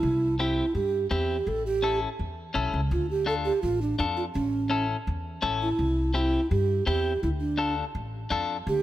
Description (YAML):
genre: latin, cumbia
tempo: 167 BPM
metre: 4/4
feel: straight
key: unclear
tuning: A4 = 440 Hz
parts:
  - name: breathy bass ocarina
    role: melody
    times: 0.0-8.8 s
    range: C#4 to A4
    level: -27 LUFS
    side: right 3 dB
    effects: none
  - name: upright bass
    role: bass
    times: 0.0-8.8 s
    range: A1 to G2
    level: -29 LUFS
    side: equal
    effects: none
  - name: clean electric guitar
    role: accompaniment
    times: 0.4-8.6 s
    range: C4 to A4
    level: -31 LUFS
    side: left 4 dB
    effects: spring reverb
room: little or no reverb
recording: close, detailed microphones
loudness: -24 LUFS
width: side -13 dB against mid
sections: 0.0-8.7 A section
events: none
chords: 0.0 C; 1.5 A7; 2.9 Dm; 4.4 A; 5.8 C; 7.2 Dm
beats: | 0.03 0.39 0.75 1.11 | 1.47 1.83 2.19 2.55 | 2.91 3.27 3.63 3.99 | 4.35 4.71 5.07 5.43 | 5.79 6.15 6.51 6.87 | 7.23 7.59 7.95 8.31 | 8.67